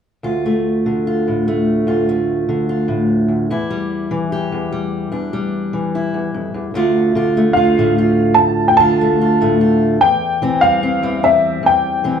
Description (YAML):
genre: acoustic folk duo or small band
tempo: 74 BPM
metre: 4/4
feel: straight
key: D minor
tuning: A4 = 441 Hz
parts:
  - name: fingerpicked steel-string acoustic guitar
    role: accompaniment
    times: 0.2-12.2 s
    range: D2 to G4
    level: -16 LUFS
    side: equal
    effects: none
  - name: warm upright piano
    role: melody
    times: 7.5-12.2 s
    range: E5 to A5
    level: -14 LUFS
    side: equal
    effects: plate reverb
room: wet small room reverb, RT60 0.5 s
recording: heard from further back in the room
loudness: -14 LUFS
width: side -7 dB against mid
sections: 0.2-6.8 A section; 6.8-12.2 B section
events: none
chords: 0.2 Dm; 3.5 Em7; 6.8 Dm; 10.0 C/E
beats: | 0.24 1.05 1.87 2.68 | 3.50 4.31 5.13 5.94 | 6.76 7.57 8.38 9.20 | 10.01 10.82 11.64